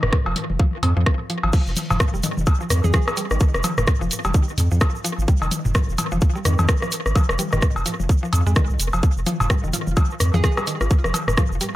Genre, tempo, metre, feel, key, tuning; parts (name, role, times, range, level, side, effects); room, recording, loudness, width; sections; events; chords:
minimal techno; 128 BPM; 4/4; swing 59% on 16ths; F minor; A4 = 436 Hz
round analog bass; bass; 0.0-11.6 s; F1 to F2; -21 LUFS; equal; tube saturation, sidechain pumping
booming analog drum machine; percussion; 0.0-11.4 s; cowbell, rim click, toms; -24 LUFS; left 1 dB; tape echo
electronic kick drum; drums; 0.1-11.5 s; -18 LUFS; equal
garage drum kit; drums; 0.1-11.7 s; crash cymbal, hi-hat, rim click; -27 LUFS; equal; tape echo
mallet-like synth pluck; riff; 0.3-11.6 s; Eb3 to F4; -29 LUFS; equal; chorus, cassette tape, sidechain pumping, tape echo
egg shaker; percussion; 1.5-11.7 s; -33 LUFS; right 4 dB; tape echo
hollow square pluck; melody; 2.8-3.0, 10.3-10.5 s; Ab4; -32 LUFS; right 3 dB; chorus, vintage 12-bit sampler grit, tape echo
digital ambience; echo-heavy mix; -18 LUFS; side -16 dB against mid
0.0-11.8 A section